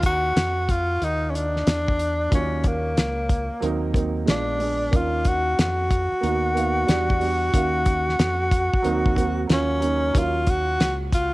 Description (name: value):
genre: hip hop, jazz-hop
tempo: 92 BPM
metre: 4/4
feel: swing 65% on 16ths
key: Eb minor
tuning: A4 = 440 Hz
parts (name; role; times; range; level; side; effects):
- warm tenor saxophone; melody; 0.0-11.3 s; Bb3 to Gb4; -23 LUFS; equal; cassette tape, tape echo
- fingered electric bass; bass; 0.0-11.3 s; Bb1 to F2; -27 LUFS; equal; none
- cloth-damped thuddy drum kit; drums; 0.0-11.3 s; hi-hat, kick drum, snare drum; -22 LUFS; equal; cassette tape
- dark grand piano; accompaniment; 2.3-11.3 s; Eb3 to F5; -28 LUFS; right 5 dB; cassette tape
room: light reverb, small room ambience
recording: home recording on cassette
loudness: -20 LUFS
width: side -19 dB against mid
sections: 0.0-10.1 A section; 10.1-11.3 A section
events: break 0.0-2.3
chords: 0.0 Ebmadd9; 1.0 N.C.; 1.7 Dsus2/E; 2.3 Ebm9; 3.6 Ebm6; 4.3 Bb7b9; 4.9 Ebm9; 6.2 Bmaj7#11/D#; 6.9 Em9; 7.5 Ebm9; 8.8 Ebm6; 9.5 Ebm7; 10.1 Ebm9